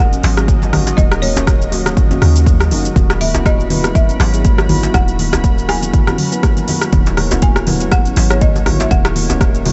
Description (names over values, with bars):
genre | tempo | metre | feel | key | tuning
afro house | 121 BPM | 4/4 | swing 56% on 16ths | unclear | A4 = 435 Hz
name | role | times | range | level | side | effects
folk marimba with hard mallets | melody | 0.0-9.7 s | Db5 to Ab5 | -27 LUFS | equal | analog delay
warm analog pad | sustained chords | 0.0-9.7 s | Bb3 to B5 | -29 LUFS | equal | chorus, sidechain pumping
mellow tine electric piano | stabs | 0.0-9.7 s | Bb3 to B4 | -26 LUFS | equal | vintage 12-bit sampler grit, sidechain pumping, analog delay
warm 808-style bass | bass | 0.0-9.7 s | Eb1 to Eb2 | -20 LUFS | equal | sidechain pumping
handpan | arpeggios | 0.1-9.7 s | Db3 to Db4 | -26 LUFS | equal | sidechain pumping, analog delay
afro-pop drum kit | drums | 0.1-9.7 s | hi-hat, rim click, shaker, toms | -22 LUFS | equal | none
congas | percussion | 0.2-9.7 s | none | -27 LUFS | equal | none
djembe | percussion | 0.2-9.7 s | none | -27 LUFS | equal | none
electronic kick drum | drums | 0.5-9.5 s | none | -16 LUFS | equal | overdrive
room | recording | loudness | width
light reverb | nothing above 7.9 kHz | -14 LUFS | mono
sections
0.0-9.7 A section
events
none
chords
0.0 Ebm7; 3.0 Esus2/Eb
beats
0.48 | 0.98 1.47 1.97 2.47 | 2.96 3.46 3.95 4.45 | 4.95 5.44 5.94 6.43 | 6.93 7.42 7.92 8.42 | 8.91 9.41